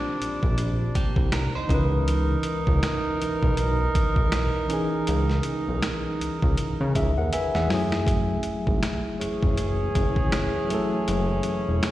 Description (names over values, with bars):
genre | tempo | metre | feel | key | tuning
R&B, neo-soul | 80 BPM | 4/4 | swing 59% on 16ths | unclear | A4 = 436 Hz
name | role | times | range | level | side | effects
tine electric piano | accompaniment | 0.0-11.9 s | Eb3 to G#5 | -29 LUFS | left 1 dB | medium stereo tremolo
warm horn section | stabs | 0.0-11.9 s | Bb2 to A#4 | -28 LUFS | right 2 dB | slapback echo
fat analog bass | bass | 0.2-11.8 s | E1 to C#3 | -25 LUFS | equal | none
boom bap sampler-style drum kit | drums | 0.2-11.9 s | finger snaps, hi-hat, kick drum, snare drum | -26 LUFS | equal | none
clean electric guitar | second line | 1.0-1.9 s | Bb3 to C5 | -34 LUFS | right 5 dB | slapback echo
room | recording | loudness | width
little or no reverb | live gig heard through the venue's PA, recital hall reverb | -22 LUFS | side -15 dB against mid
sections
0.0-11.9 A section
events
tine electric piano fill 6.9-8.1; drum fill 7.3-8.1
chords
0.0 Cm9; 1.7 C#m9; 7.7 F#m9